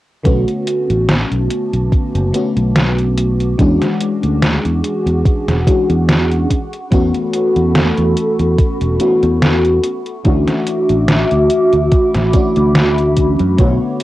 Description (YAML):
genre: vaporwave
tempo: 72 BPM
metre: 4/4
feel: swing 54% on 16ths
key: unclear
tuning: A4 = 440 Hz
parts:
  - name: FM electric piano with soft pad layer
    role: accompaniment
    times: 0.2-14.0 s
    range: D3 to C#5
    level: -16 LUFS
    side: left 1 dB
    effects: phaser, lush chorus, analog delay
  - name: warbly tape-like pad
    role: sustained chords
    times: 1.3-14.0 s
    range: F#4 to D6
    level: -20 LUFS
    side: right 1 dB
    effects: chorus, built-in reverb
  - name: fingered electric bass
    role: bass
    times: 0.3-13.8 s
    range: E1 to F#2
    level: -16 LUFS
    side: equal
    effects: tube saturation
  - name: detuned 8-bit digital drum machine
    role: drums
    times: 0.3-14.0 s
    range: hi-hat, snare drum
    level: -17 LUFS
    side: equal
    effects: overdrive, cassette tape
  - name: electronic kick drum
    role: drums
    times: 0.3-13.8 s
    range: none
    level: -14 LUFS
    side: equal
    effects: overdrive, cassette tape
room: wet booth ambience, RT60 0.2 s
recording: home recording on cassette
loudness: -12 LUFS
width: side -16 dB against mid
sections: 0.3-13.6 A section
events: none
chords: 0.3 Bm9; 3.6 E13; 6.5 A69/E; 9.8 Dmaj9